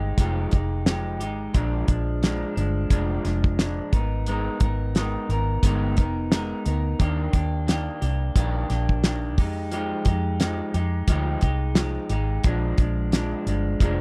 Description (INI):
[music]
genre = indie pop, bedroom pop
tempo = 88 BPM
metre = 4/4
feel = swing 55% on 16ths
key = unclear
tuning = A4 = 441 Hz
[part]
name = electric guitar through a small old amp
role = accompaniment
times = 0.0-14.0 s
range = Bb2 to Bb4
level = -30 LUFS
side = equal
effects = subtle chorus, vibrato effect
[part]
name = vintage muted fingered electric bass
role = bass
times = 0.0-14.0 s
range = F1 to F2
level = -28 LUFS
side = equal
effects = none
[part]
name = cloth-damped thuddy drum kit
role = drums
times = 0.2-14.0 s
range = hi-hat, kick drum, snare drum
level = -23 LUFS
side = equal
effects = none
[sound]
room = little or no reverb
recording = dry, close 1970s-style studio recording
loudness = -24 LUFS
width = mono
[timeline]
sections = 0.0-14.0 A section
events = none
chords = 0.0 Fm9; 1.5 Bb7; 3.9 Abmadd9; 7.0 Ebmaj7; 9.4 Fm9; 12.4 Bb7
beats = 0.18 0.86 | 1.54 2.23 2.91 3.59 | 4.27 4.95 5.63 6.31 | 7.00 7.68 8.36 9.04 | 9.72 10.40 11.08 11.77 | 12.45 13.13 13.81